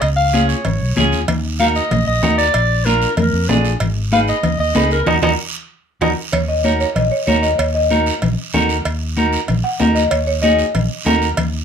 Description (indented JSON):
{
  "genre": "latin, cumbia",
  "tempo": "190 BPM",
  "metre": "4/4",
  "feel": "straight",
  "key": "Eb minor",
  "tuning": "A4 = 440 Hz",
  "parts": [
    { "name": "warm clarinet", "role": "second line", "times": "0.0-6.1 s", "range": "Bb4 to F5", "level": "-18 LUFS", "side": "equal", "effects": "none" },
    { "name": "fingered electric bass", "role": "bass", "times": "0.0-11.6 s", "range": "Ab1 to F2", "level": "-20 LUFS", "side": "equal", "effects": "none" },
    { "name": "cowbell and timbales", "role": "percussion", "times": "0.0-11.5 s", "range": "none", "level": "-24 LUFS", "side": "right 3 dB", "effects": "none" },
    { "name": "guiro", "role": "percussion", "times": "0.0-11.6 s", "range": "none", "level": "-28 LUFS", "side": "right 6 dB", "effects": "none" },
    { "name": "clean electric guitar", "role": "accompaniment", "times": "0.3-11.3 s", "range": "Db4 to Cb5", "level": "-20 LUFS", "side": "right 1 dB", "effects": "none" },
    { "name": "congas", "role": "percussion", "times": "0.3-11.5 s", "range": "none", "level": "-21 LUFS", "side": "left 2 dB", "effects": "none" },
    { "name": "buzzing marimba with medium hard mallets", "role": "melody", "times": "6.3-11.3 s", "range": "Db5 to Gb5", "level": "-18 LUFS", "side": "left 1 dB", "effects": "plate reverb" }
  ],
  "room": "moderate small room ambience, RT60 0.5 s",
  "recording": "none",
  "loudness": "-14 LUFS",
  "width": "side -7 dB against mid",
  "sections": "0.0-6.3 A section; 6.3-11.6 B section",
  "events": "clarinet solo 0.0-6.3; drum fill 5.1-6.3; band accent 5.1-6.3; marimba solo 6.3-11.6",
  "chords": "0.0 Db; 1.3 Ebm; 2.5 Bb7; 3.8 Abm; 5.1 Ebm"
}